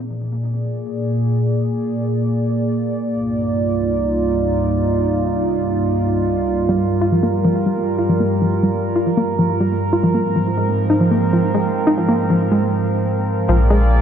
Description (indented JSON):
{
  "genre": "IDM",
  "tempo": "139 BPM",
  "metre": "4/4",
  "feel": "straight",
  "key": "unclear",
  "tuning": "A4 = 438 Hz",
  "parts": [
    { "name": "warbly tape-like pad", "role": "sustained chords", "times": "0.0-14.0 s", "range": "C2 to D5", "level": "-18 LUFS", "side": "right 1 dB", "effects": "chorus, built-in reverb" },
    { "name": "warbly dusty pluck", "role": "arpeggios", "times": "6.7-13.8 s", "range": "F3 to F4", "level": "-19 LUFS", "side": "left 1 dB", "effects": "chorus, tape echo" },
    { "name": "warm sub bass", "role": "bass", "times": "13.5-14.0 s", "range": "Bb1", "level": "-13 LUFS", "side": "equal", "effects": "none" }
  ],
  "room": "wet echo chamber reverb, RT60 2.3 s",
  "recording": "dark, warm production",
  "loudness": "-16 LUFS",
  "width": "side -8 dB against mid",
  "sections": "0.0-13.5 A section",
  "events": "filter sweep on ambient pad 0.0-13.5; break 12.6-13.5",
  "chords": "0.0 Bb7; 3.1 Cm11; 6.6 Gm7; 10.0 Ab69; 13.5 Bb7"
}